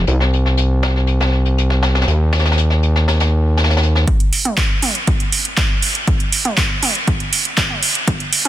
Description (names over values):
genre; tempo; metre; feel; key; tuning
melodic techno; 120 BPM; 4/4; straight; unclear; A4 = 439 Hz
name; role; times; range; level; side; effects
gritty driven synth bass; bass; 0.0-4.1 s; C2 to Eb2; -14 LUFS; equal; distortion, sidechain pumping
jazz brush drum kit; drums; 0.1-4.1 s; hi-hat, snare drum; -20 LUFS; left 2 dB; sidechain pumping on hats, high-pass filter on hats, low-pass filter on hats, small room ambience, high-pass filter on snare, low-pass filter on snare, high-pass filter on room, low-pass filter on room
electronic kick drum; drums; 4.1-8.2 s; none; -18 LUFS; equal; small room ambience
house drum kit; drums; 4.1-8.5 s; handclaps, hi-hat, toms; -16 LUFS; right 2 dB; high-pass filter on hats, small room ambience, high-pass filter on toms, high-pass filter on snare
room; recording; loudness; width
light reverb, studio reverb; dense, heavily limited modern master, high-pass filter; -14 LUFS; side -13 dB against mid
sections
0.0-4.1 A section; 4.1-8.5 B section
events
build-up 4.1-8.5; filter sweep 4.1-8.5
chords
none